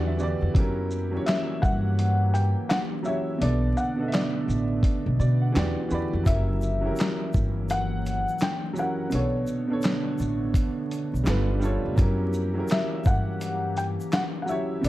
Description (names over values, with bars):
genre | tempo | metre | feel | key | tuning
lo-fi hip hop | 84 BPM | 4/4 | swing 62% on 16ths | unclear | A4 = 441 Hz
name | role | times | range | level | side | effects
clear upright piano | accompaniment | 0.0-14.9 s | B2 to B5 | -30 LUFS | right 1 dB | cassette tape, low-pass filter, plate reverb
warbly tape-like pad | sustained chords | 0.0-14.9 s | D3 to G4 | -33 LUFS | right 1 dB | chorus, built-in reverb, low-pass filter, plate reverb
upright bass | bass | 0.0-14.9 s | F1 to B2 | -26 LUFS | equal | none
dusty soul sampler-style drum kit | drums | 0.2-14.9 s | handclaps, hi-hat, kick drum, shaker, snare drum | -26 LUFS | equal | vintage 12-bit sampler grit
felt-muted upright piano | melody | 1.3-14.9 s | C#5 to G5 | -31 LUFS | left 2 dB | low-pass filter, plate reverb
egg shaker | percussion | 6.3-14.9 s | none | -52 LUFS | left 3 dB | none
room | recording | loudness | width
light reverb | dark, warm production, vinyl crackle | -23 LUFS | side -16 dB against mid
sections
0.0-14.9 A section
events
upright piano fill 0.0-0.6, 4.8-6.3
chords
0.0 Em7; 0.6 F#7b9; 3.4 Bm7; 5.6 Em7; 6.3 F#7b9; 9.1 Bm9; 11.3 G9; 12.0 F#7b9